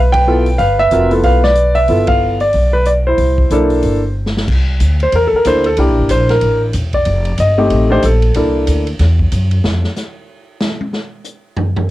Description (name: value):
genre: jazz piano trio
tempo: 186 BPM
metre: 4/4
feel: swing 61% on 8ths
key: unclear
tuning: A4 = 440 Hz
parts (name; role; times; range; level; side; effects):
- warm grand piano; melody; 0.0-8.8 s; A3 to G5; -13 LUFS; equal; cassette tape
- upright bass; bass; 0.0-9.8 s; E1 to F#2; -14 LUFS; equal; none
- swinging big-band drum kit; drums; 0.1-11.8 s; crash cymbal, hi-hat, kick drum, ride cymbal, snare drum, toms; -22 LUFS; equal; cassette tape
room: light reverb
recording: home recording on cassette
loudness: -11 LUFS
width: side -16 dB against mid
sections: 0.0-4.5 A section; 4.5-11.9 B section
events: band accent 0.1, 2.1; drum fill 4.2-4.5; grand piano solo 4.5-11.9; drum solo 9.6-11.9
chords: 0.0 G13; 3.2 C13; 7.1 F13; 8.4 C13; 9.6 N.C.